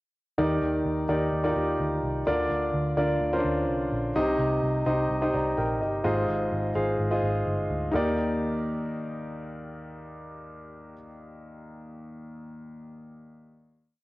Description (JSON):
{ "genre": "piano-driven pop", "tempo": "127 BPM", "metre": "4/4", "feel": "straight", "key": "Eb major", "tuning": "A4 = 440 Hz", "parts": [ { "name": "clear concert grand piano", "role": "accompaniment", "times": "0.4-14.0 s", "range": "Eb2 to Bb5", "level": "-27 LUFS", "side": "equal", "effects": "none" }, { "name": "vintage muted picked electric bass", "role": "bass", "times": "0.4-10.9 s", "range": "G1 to Eb2", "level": "-31 LUFS", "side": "equal", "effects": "none" } ], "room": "moderate lush hall reverb, RT60 2.2 s", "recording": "home recording on cassette", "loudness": "-24 LUFS", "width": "side -20 dB against mid", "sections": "0.4-7.9 verse; 7.9-11.7 final chord", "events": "none", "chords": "0.4 Ebmaj7; 2.3 Bb/D; 4.2 Cm; 6.0 Ab6; 7.9 Ebmaj7" }